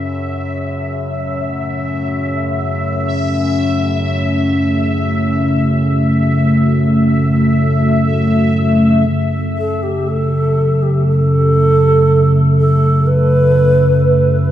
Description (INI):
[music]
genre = dark ambient drone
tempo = 60 BPM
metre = 4/4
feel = straight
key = F# minor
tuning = A4 = 440 Hz
[part]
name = analog drone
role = drone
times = 0.0-14.5 s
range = F#2 to C#3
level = -14 LUFS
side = equal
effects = chorus
[part]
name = bubbling stepped-filter texture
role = texture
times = 0.0-14.5 s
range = E5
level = -24 LUFS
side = left 3 dB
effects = chorus, built-in reverb
[part]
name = dark analog pad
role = sustained chords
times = 1.1-14.5 s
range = A3 to E5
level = -19 LUFS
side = equal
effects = chorus
[part]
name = long shakuhachi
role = melody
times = 9.6-14.5 s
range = G4 to B4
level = -15 LUFS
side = right 1 dB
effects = tape echo
[sound]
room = moderate huge ambient reverb, RT60 8.3 s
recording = dreamy mix soaked in reverb, studio ambience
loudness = -12 LUFS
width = side -11 dB against mid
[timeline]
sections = 0.0-9.1 A section; 9.1-14.5 B section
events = fade-in on synth drone 0.0-9.1; filter sweep on synth drone 9.1-14.5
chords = 0.0 F#m7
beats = 0.08 | 1.08 2.08 3.08 4.08 | 5.08 6.08 7.08 8.08 | 9.08 10.08 11.08 12.08 | 13.08 14.08